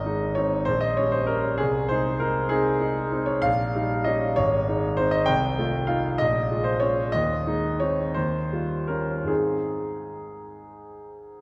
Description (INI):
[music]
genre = classical, romantic character piece for solo piano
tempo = 49-67 BPM (dotted quarters)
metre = 6/8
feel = rubato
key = Ab major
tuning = A4 = 441 Hz
[part]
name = clear concert grand piano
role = solo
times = 0.0-11.4 s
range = Ab1 to G5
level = -25 LUFS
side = equal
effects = none
[sound]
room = wet concert hall reverb, RT60 2.4 s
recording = dark, warm production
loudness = -24 LUFS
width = mono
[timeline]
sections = 0.0-11.4 A section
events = none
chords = 0.0 Ab; 0.7 Gdim/Bb; 1.6 Ab/C; 3.4 Eb7/Bb; 4.4 Ab; 5.3 F7/C; 6.2 Bbm7; 7.1 Ab/Eb; 8.2 Eb9; 9.3 Ab